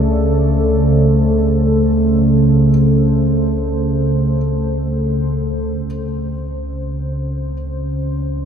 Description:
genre	dark ambient drone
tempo	free time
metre	none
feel	none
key	C# double harmonic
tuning	A4 = 440 Hz
part	deep dark ambient pad	sustained chords	0.0-8.5 s	C#3 to D5	-16 LUFS	equal	chorus, built-in reverb
part	dark baby grand piano	arpeggios	0.0-5.9 s	E#4	-51 LUFS	left 2 dB	none
part	deep rumbling drone	drone	0.0-8.5 s	C#2 to C#3	-19 LUFS	equal	built-in reverb
room	wet cathedral reverb, RT60 5.6 s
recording	in a vast, echoing space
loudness	-14 LUFS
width	side -7 dB against mid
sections	0.0-5.9 A section; 5.9-8.5 B section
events	filter sweep on synth drone 0.0-5.9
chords	0.0 D5/C#; 5.9 C#

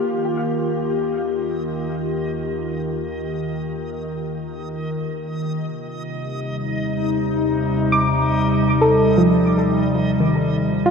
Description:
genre	ambient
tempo	59 BPM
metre	3/4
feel	straight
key	Eb lydian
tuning	A4 = 445 Hz
part	warbly tape-like pad	sustained chords	0.0-10.9 s	C3 to G4	-20 LUFS	left 1 dB	chorus, built-in reverb, shimmer reverb
part	soft round pluck	arpeggios	0.0-2.8, 7.9-10.9 s	Eb3 to D6	-20 LUFS	equal	chorus, dub echo, shimmer reverb
part	deep rumbling drone	bass	0.6-10.9 s	Eb2	-35 LUFS	equal	built-in reverb
part	backwards swelling texture	texture	0.9-10.9 s	Eb5	-34 LUFS	right 2 dB	built-in reverb, shimmer reverb
room	wet plate reverb, RT60 3.2 s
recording	echo-heavy mix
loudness	-18 LUFS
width	side -6 dB against mid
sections	0.0-10.9 A section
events	fade-in on synth drone 0.0-10.9; fade-in on synth texture 0.0-10.9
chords	0.0 Ebadd9; 5.6 Cm/Eb

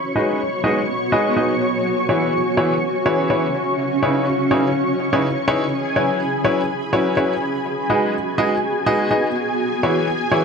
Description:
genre	piano house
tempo	124 BPM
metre	4/4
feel	swing 56% on 16ths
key	unclear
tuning	A4 = 439 Hz
part	analog string pad	sustained chords	0.0-10.4 s	G#4 to C#6	-23 LUFS	equal	ensemble chorus
part	granular cloud pad	texture	0.0-10.4 s	B3 to B5	-23 LUFS	equal	built-in reverb
part	bright baby grand piano	riff	0.2-10.4 s	C#3 to D#5	-20 LUFS	left 1 dB	low-pass filter, ping-pong delay
part	electronic hi-hat and shaker	drums	0.2-10.4 s	none	barely audible	none	none
room	moderate plate reverb, RT60 1.5 s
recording	none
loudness	-17 LUFS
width	side -5 dB against mid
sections	0.0-10.4 A section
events	filter sweep on analog synth pad 0.0-10.4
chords	0.0 G#m7; 1.6 E69; 3.8 C#m9; 5.7 F#7sus4; 7.7 G#m7; 9.3 E69

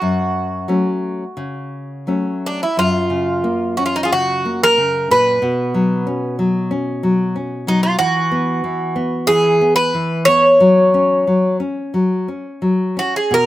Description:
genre	fado-style ballad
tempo	83-94 BPM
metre	4/4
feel	rubato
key	F# major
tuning	A4 = 440 Hz
part	Greek bouzouki	melody	0.0-13.5 s	D4 to C#5	-15 LUFS	right 1 dB	none
part	nylon-string guitar	accompaniment	0.0-13.5 s	F#2 to C#4	-19 LUFS	left 1 dB	none
room	little or no reverb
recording	recorded outdoors, with no room sound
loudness	-14 LUFS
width	side -15 dB against mid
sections	0.0-2.8 A section; 2.8-13.5 B section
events	none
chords	0.0 F#m; 2.8 F#; 5.4 Bsus2; 8.0 E5; 10.6 F#5

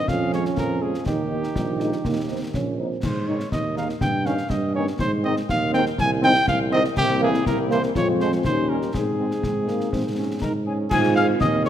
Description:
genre	military-style march for wind band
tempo	122 BPM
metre	2/4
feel	straight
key	Ab major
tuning	A4 = 440 Hz
part	mellow cornet	melody	0.0-11.7 s	G4 to Ab5	-25 LUFS	equal	none
part	mellow trombone section	sustained chords	0.0-11.7 s	Eb3 to Eb4	-28 LUFS	right 4 dB	none
part	clear tuba	bass	0.1-11.7 s	Bb1 to Ab2	-25 LUFS	right 2 dB	none
part	concert snare drum, concert bass drum and clash cymbals	drums	0.1-11.7 s	none	-28 LUFS	left 2 dB	none
part	dark French horn section	accompaniment	0.3-11.7 s	Ab3 to Ab4	-28 LUFS	left 6 dB	none
part	warm euphonium	second line	1.6-3.0, 10.9-11.7 s	G3 to F4	-28 LUFS	right 7 dB	none
part	mellow wooden piccolo	second line	10.4-11.7 s	Ab5 to F6	-25 LUFS	left 5 dB	none
room	moderate concert hall reverb, RT60 2.3 s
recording	none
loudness	-20 LUFS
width	side -10 dB against mid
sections	0.0-10.9 A section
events	none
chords	0.1 Db/F; 1.1 Eb; 3.0 Ab5; 4.0 Eb7/G; 5.0 Ab; 6.0 Ab/C; 7.0 C7; 8.0 Fm; 8.4 Eb7; 8.9 Ab

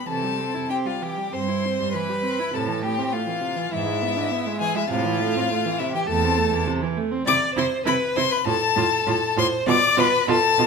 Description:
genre	quick classical-period movement for string quartet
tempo	101 BPM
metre	4/4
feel	rubato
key	C major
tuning	A4 = 441 Hz
part	clear violin	melody	0.0-10.7 s	E5 to D6	-24 LUFS	left 8 dB	none
part	clear viola	accompaniment	0.0-10.7 s	C3 to F4	-27 LUFS	right 5 dB	none
part	rich violin	second line	0.1-10.7 s	E4 to D5	-26 LUFS	left 1 dB	none
part	rich cello	bass	0.1-10.7 s	E2 to C3	-27 LUFS	right 5 dB	none
room	moderate recital hall reverb, RT60 1.4 s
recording	minimal, uncompressed stereo recording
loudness	-20 LUFS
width	side -5 dB against mid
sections	0.0-10.7 A section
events	none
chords	0.1 C; 2.6 Am; 3.7 E7/G#; 4.9 Am; 7.3 C; 8.5 F/A; 9.7 Bm7b5

